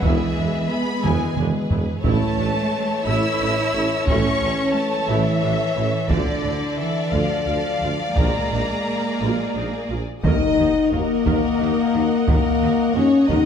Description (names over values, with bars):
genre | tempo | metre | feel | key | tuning
cinematic, epic orchestral film score | 59 BPM (dotted quarters) | 6/8 | straight | Eb minor from 10.2 s | A4 = 439 Hz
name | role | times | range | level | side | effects
warm symphonic violin section | melody | 0.0-13.5 s | D5 to E6 | -28 LUFS | left 2 dB | none
clear symphonic violin section | second line | 0.0-13.5 s | G#4 to Eb5 | -31 LUFS | left 2 dB | none
warm chamber viola section | accompaniment | 0.0-13.5 s | D3 to Eb5 | -30 LUFS | right 1 dB | none
mellow French horn section | sustained chords | 0.0-13.5 s | D3 to D5 | -22 LUFS | left 4 dB | none
clear tuba | bass | 0.0-13.4 s | E1 to Eb2 | -29 LUFS | right 3 dB | none
warm studio double bass section | bass | 0.0-13.4 s | A1 to E2 | -28 LUFS | right 3 dB | none
warm symphonic cello section | bass | 0.0-13.4 s | D3 to E4 | -26 LUFS | right 3 dB | none
taiko ensemble | drums | 0.0-13.5 s | none | -23 LUFS | equal | none
timpani | percussion | 10.2-11.2 s | Eb3 | -28 LUFS | left 1 dB | none
impact | sound effects | 10.2-12.3 s | none | -32 LUFS | equal | none
room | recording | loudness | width
wet scoring stage reverb, RT60 1.7 s | none | -18 LUFS | side -7 dB against mid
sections
0.0-10.2 A section; 10.2-13.5 B section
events
drum fill 1.0-2.0; impact 10.2-12.3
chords
0.0 E; 2.0 A; 6.1 Dm; 8.2 A#7; 10.2 Ebm